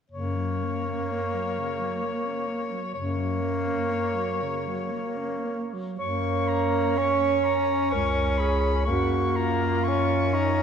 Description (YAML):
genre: classical, lyrical piece for single-reed quartet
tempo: 53-66 BPM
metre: 3/4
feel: rubato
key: F# major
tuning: A4 = 440 Hz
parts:
  - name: bright soprano saxophone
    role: melody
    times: 0.1-10.6 s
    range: C#5 to C#6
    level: -31 LUFS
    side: left 4 dB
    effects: none
  - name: clear alto saxophone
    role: second line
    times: 0.1-10.6 s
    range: C#3 to C#5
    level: -29 LUFS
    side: right 6 dB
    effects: none
  - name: clear tenor saxophone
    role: accompaniment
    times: 0.1-10.6 s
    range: A#3 to C#4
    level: -29 LUFS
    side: left 1 dB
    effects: none
  - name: dark bass clarinet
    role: bass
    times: 0.1-10.6 s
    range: C#2 to F#2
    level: -28 LUFS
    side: left 1 dB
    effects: none
room: wet church reverb, RT60 2.8 s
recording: recorded in a church or concert hall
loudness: -24 LUFS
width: side -7 dB against mid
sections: 0.1-6.0 A section; 6.0-10.6 B section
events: none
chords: 0.1 F#; 7.9 C#5; 8.9 F#